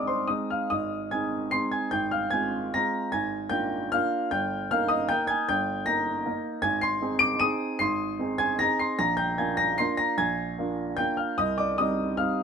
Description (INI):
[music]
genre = classical, piano waltz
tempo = 151 BPM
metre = 3/4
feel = uneven beats, rubato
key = unclear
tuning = A4 = 440 Hz
[part]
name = warm upright piano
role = solo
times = 0.0-12.4 s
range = G1 to Eb7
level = -24 LUFS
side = equal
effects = none
[sound]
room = light reverb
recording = close, detailed microphones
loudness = -24 LUFS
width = side -6 dB against mid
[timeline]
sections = 0.0-12.4 A section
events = none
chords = 0.0 Ab; 1.9 Fm/Ab; 3.1 Bb7/Ab; 4.3 Eb/G; 6.7 Ab; 9.0 Bb7; 11.4 Cm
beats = 0.28 | 0.69 1.10 1.52 | 1.92 2.31 2.72 | 3.12 3.52 3.93 | 4.32 4.70 5.10 | 5.49 5.88 6.27 | 6.65 7.02 7.43 | 7.81 8.20 8.61 | 9.00 9.39 9.79 | 10.20 10.59 10.99 | 11.39 11.78 12.18